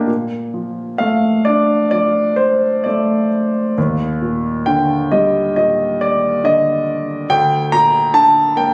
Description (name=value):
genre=classical, lyrical solo piano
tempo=64-72 BPM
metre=4/4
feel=rubato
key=Bb major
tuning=A4 = 442 Hz
part: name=warm concert grand piano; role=solo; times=0.0-8.7 s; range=D2 to Bb5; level=-16 LUFS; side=equal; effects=none
room=light reverb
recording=recorded on a phone in the room, club reverb, compression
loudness=-16 LUFS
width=mono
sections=0.1-8.7 A section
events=none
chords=0.1 Bbmaj7; 3.8 Ebmaj7; 7.3 Ebmaj7#11/D (rootless)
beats=| 0.08 1.01 1.93 2.86 | 3.77 4.67 5.56 6.43 | 7.29 8.14